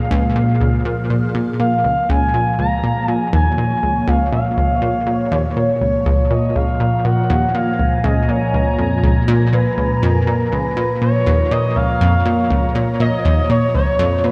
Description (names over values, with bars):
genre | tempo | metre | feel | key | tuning
ambient, sequencer-driven space music | 121 BPM | 4/4 | straight | Bb minor | A4 = 444 Hz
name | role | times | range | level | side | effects
phased analog pad | sustained chords | 0.0-14.3 s | Bb2 to Bb5 | -22 LUFS | equal | phaser, chorus, tremolo
analog pluck | riff | 0.1-14.3 s | Db2 to Bb2 | -20 LUFS | equal | chorus, tape echo
expressive portamento lead | melody | 1.6-14.3 s | Bb4 to Bb5 | -23 LUFS | equal | lush chorus, tape echo
room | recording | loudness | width
wet echo chamber reverb, RT60 2.3 s | echo-heavy mix | -17 LUFS | mono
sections
0.0-14.3 A section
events
none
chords
0.0 Bbm7